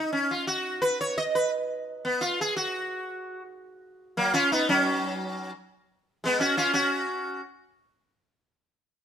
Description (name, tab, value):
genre	musette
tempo	171 BPM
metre	3/4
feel	straight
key	F# major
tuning	A4 = 440 Hz
part	sitar	solo	0.0-7.4 s	F#3 to D#5	-24 LUFS	equal	none
room	moderate stone room reverb, RT60 1.0 s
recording	band playing live in one room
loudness	-24 LUFS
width	side -8 dB against mid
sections	0.0-3.6 A section; 3.6-7.8 B section; 7.8-8.8 C section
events	none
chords	0.0 N.C.; 3.6 F#5; 4.7 N.C.; 5.7 C#5; 6.7 N.C.